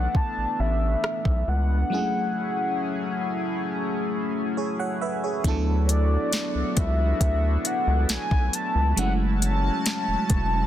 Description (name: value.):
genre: contemporary R&B.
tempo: 68 BPM.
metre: 4/4.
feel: straight.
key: unclear.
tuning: A4 = 440 Hz.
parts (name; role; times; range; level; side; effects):
mellow horn-like synth lead; melody; 0.0-10.7 s; C#5 to A5; -28 LUFS; left 2 dB; chorus, digital delay.
FM electric piano; accompaniment; 0.0-10.7 s; E3 to F#5; -30 LUFS; right 3 dB; chorus.
chorused pulse-width pad; sustained chords; 0.0-10.7 s; F#3 to A5; -31 LUFS; left 2 dB; sidechain pumping.
round analog bass; bass; 0.0-10.7 s; E1 to D2; -23 LUFS; equal; none.
smooth R&B drum kit; drums; 0.1-10.5 s; hi-hat, kick drum, rim click, snare drum; -25 LUFS; equal; overdrive.
room: little or no reverb.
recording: dense, heavily limited modern master.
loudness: -22 LUFS.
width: side -12 dB against mid.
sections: 0.0-5.4 A section; 5.4-10.7 B section.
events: break 1.9-5.4.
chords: 0.0 Bm11; 1.9 F#m9; 5.4 D69; 9.0 F#m9.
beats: 0.15 1.03 | 1.92 2.80 3.68 4.56 | 5.44 6.33 7.21 8.09 | 8.97 9.86.